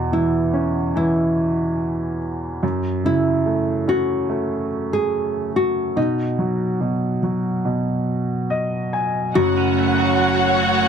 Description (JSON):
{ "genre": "pop ballad", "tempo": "72 BPM", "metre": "4/4", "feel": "straight", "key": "unclear", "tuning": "A4 = 440 Hz", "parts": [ { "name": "nylon-string guitar", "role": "melody", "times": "0.0-10.6 s", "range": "D#4 to G#4", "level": "-22 LUFS", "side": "right 1 dB", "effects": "none" }, { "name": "warm baby grand piano", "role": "accompaniment", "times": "0.0-10.9 s", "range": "F#1 to G#5", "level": "-21 LUFS", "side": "equal", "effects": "none" }, { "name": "warm studio violin section", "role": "second line", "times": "9.4-10.9 s", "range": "F#4 to F#5", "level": "-20 LUFS", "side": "right 1 dB", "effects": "none" }, { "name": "warm studio string section", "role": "sustained chords", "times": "9.4-10.9 s", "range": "A3 to C#5", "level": "-22 LUFS", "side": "left 4 dB", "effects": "none" }, { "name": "direct-recorded clean electric guitar", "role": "arpeggios", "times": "9.4-10.9 s", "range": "F#2 to F#4", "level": "-23 LUFS", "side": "right 10 dB", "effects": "spring reverb, slapback echo" } ], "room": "light reverb", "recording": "dry, close 1970s-style studio recording", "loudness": "-18 LUFS", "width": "side -7 dB against mid", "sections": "0.0-9.4 A section; 9.4-10.9 B section", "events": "grand piano fill 8.1-9.4", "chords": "0.0 C#m7/E; 2.6 F#m; 6.0 B; 9.4 F#m" }